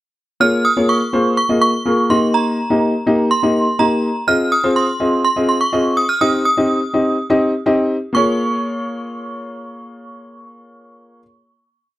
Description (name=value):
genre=dance-pop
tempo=124 BPM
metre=4/4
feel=straight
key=Bb dorian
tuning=A4 = 444 Hz
part: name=synth chime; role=melody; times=0.4-11.2 s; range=Bb5 to F6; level=-18 LUFS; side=right 2 dB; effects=ensemble chorus
part: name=warm grand piano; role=accompaniment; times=0.4-11.2 s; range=Bb3 to Eb5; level=-16 LUFS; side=left 1 dB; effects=none
room=moderate booth ambience, RT60 0.2 s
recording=dark, warm production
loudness=-14 LUFS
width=side -15 dB against mid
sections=0.4-8.1 breakdown; 8.1-12.0 final chord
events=none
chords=0.4 Bbm7; 2.1 Eb; 4.3 Fm7; 6.2 Cm; 8.1 Bbm7